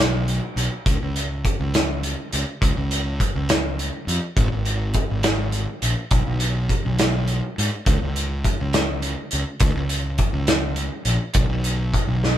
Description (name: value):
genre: math rock and midwest emo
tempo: 69 BPM (dotted quarters)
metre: 6/8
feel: straight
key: unclear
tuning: A4 = 440 Hz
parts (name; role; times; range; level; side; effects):
- fuzz fingered electric bass; bass; 0.0-12.4 s; G#1 to G#2; -23 LUFS; equal; overdrive
- loose indie drum kit; drums; 0.0-12.4 s; hi-hat, kick drum, snare drum; -22 LUFS; equal; none
room: light reverb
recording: band playing live in one room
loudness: -20 LUFS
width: side -11 dB against mid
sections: 0.0-12.4 A section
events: drum fill 12.2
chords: none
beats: | 0.85 1.73 | 2.61 3.48 | 4.36 5.24 | 6.11 6.99 | 7.86 8.73 | 9.61 10.48 | 11.35 12.22